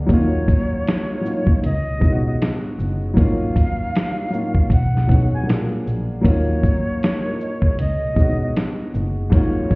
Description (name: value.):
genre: lo-fi hip hop.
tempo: 78 BPM.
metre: 4/4.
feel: swing 61% on 16ths.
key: unclear.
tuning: A4 = 440 Hz.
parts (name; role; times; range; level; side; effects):
dark upright piano; accompaniment; 0.0-9.8 s; Ab2 to Eb5; -23 LUFS; equal; cassette tape, low-pass filter.
warm double bass; bass; 0.0-9.8 s; Gb1 to B2; -21 LUFS; equal; none.
breathy bright concert flute; melody; 0.1-9.8 s; Db5 to G#5; -28 LUFS; equal; low-pass filter.
dusty soul sampler-style drum kit; drums; 0.1-9.8 s; hi-hat, kick drum, shaker, snare drum; -18 LUFS; equal; none.
room: light reverb.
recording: heard muffled through a wall, stone room reverb, EQ.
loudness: -17 LUFS.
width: side -26 dB against mid.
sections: 0.0-9.8 A section.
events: none.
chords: 0.1 Ebm9; 1.6 Db9sus4; 3.2 Ab13sus4; 4.7 B69; 5.5 Bb7b13; 6.2 Ebm9; 7.8 Db9sus4.